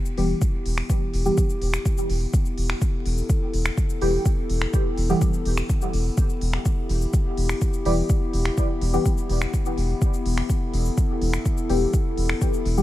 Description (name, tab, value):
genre	dub techno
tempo	125 BPM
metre	4/4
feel	straight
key	E minor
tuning	A4 = 441 Hz
part	dark analog pad	sustained chords	0.0-12.8 s	B3 to A4	-30 LUFS	left 2 dB	lush chorus, sidechain pumping
part	deep house drum kit	drums	0.1-12.8 s	cabasa, finger snaps, hi-hat	-32 LUFS	left 1 dB	none
part	deep mellow chord stab	stabs	0.2-12.8 s	E3 to G4	-28 LUFS	equal	chorus, phaser, sidechain pumping, dub echo
part	round analog bass	bass	0.2-12.8 s	E1	-24 LUFS	equal	sidechain pumping
part	electronic kick drum	drums	0.4-12.5 s	none	-22 LUFS	equal	none
room	digital ambience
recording	vinyl crackle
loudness	-20 LUFS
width	side -15 dB against mid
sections	0.0-12.8 A section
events	none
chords	0.0 Em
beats	0.41 | 0.90 1.38 1.85 2.33 | 2.81 3.29 3.77 4.25 | 4.74 5.21 5.70 6.17 | 6.66 7.13 7.62 8.10 | 8.57 9.05 9.54 10.02 | 10.49 10.97 11.46 11.94 | 12.41